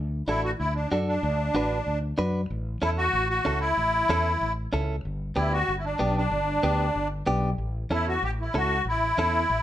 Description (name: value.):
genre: latin, cumbia.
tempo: 189 BPM.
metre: 4/4.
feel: straight.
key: unclear.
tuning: A4 = 441 Hz.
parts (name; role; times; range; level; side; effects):
fretless electric bass; bass; 0.0-9.6 s; G1 to F#2; -28 LUFS; equal; none.
musette accordion; melody; 0.3-9.6 s; D4 to G4; -25 LUFS; equal; none.
direct-recorded clean electric guitar; accompaniment; 0.3-9.4 s; B3 to B4; -29 LUFS; right 1 dB; none.
room: moderate studio reverb, RT60 0.8 s.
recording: minimal, uncompressed stereo recording.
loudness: -24 LUFS.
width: side -12 dB against mid.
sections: 0.0-9.6 A section.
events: none.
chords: 0.0 D; 2.5 A; 5.0 G; 7.6 A.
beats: 0.27 0.59 0.91 | 1.23 1.55 1.86 2.18 | 2.50 2.82 3.14 3.46 | 3.77 4.09 4.41 4.73 | 5.05 5.37 5.68 6.00 | 6.32 6.64 6.96 7.27 | 7.59 7.91 8.23 8.55 | 8.87 9.18 9.50.